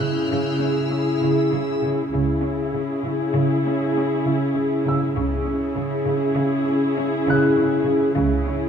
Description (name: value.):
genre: cinematic, suspense film score.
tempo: 99 BPM.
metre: 5/4.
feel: straight.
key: C# minor.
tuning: A4 = 440 Hz.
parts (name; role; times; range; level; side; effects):
dark symphonic viola section; accompaniment; 0.0-8.7 s; E4 to G#4; -22 LUFS; left 2 dB; none.
warm symphonic cello section; riff; 0.0-8.7 s; C#3 to C#4; -25 LUFS; right 2 dB; none.
warm symphonic cello section; bass; 0.0-8.7 s; C#3; -25 LUFS; right 2 dB; none.
clear studio violin section; texture; 0.0-1.8 s; E6 to G6; -34 LUFS; left 3 dB; none.
dark concert grand piano; texture; 0.0-8.7 s; E6 to A6; -34 LUFS; equal; none.
warm symphonic double bass section; bass; 2.1-8.7 s; C#2; -27 LUFS; right 3 dB; none.
room: light reverb.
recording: minimal, uncompressed stereo recording.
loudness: -19 LUFS.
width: side -7 dB against mid.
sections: 0.0-8.7 A section.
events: none.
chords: 0.0 C#m.